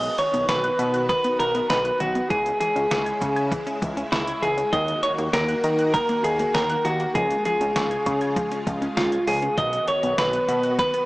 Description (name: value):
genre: synth-pop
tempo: 99 BPM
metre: 4/4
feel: straight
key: unclear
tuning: A4 = 443 Hz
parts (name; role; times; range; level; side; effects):
- clean electric guitar; melody; 0.0-11.1 s; E4 to D#5; -22 LUFS; equal; analog delay
- string machine, full ensemble; sustained chords; 0.0-11.1 s; C#3 to F#4; -31 LUFS; equal; ensemble chorus
- fat analog bass; bass; 0.0-10.8 s; B1 to D#3; -28 LUFS; equal; none
- detuned 8-bit digital drum machine; drums; 0.0-11.1 s; hi-hat, kick drum, snare drum; -30 LUFS; equal; overdrive, analog delay
- wide unison pluck; arpeggios; 0.2-11.1 s; D#3 to G#6; -32 LUFS; equal; analog delay
room: wet spring reverb, RT60 1.5 s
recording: echo-heavy mix, small speaker sound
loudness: -20 LUFS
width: side -20 dB against mid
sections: 0.0-11.1 A section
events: none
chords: 0.0 B; 2.3 C#m; 4.7 D#m; 7.2 C#; 9.6 B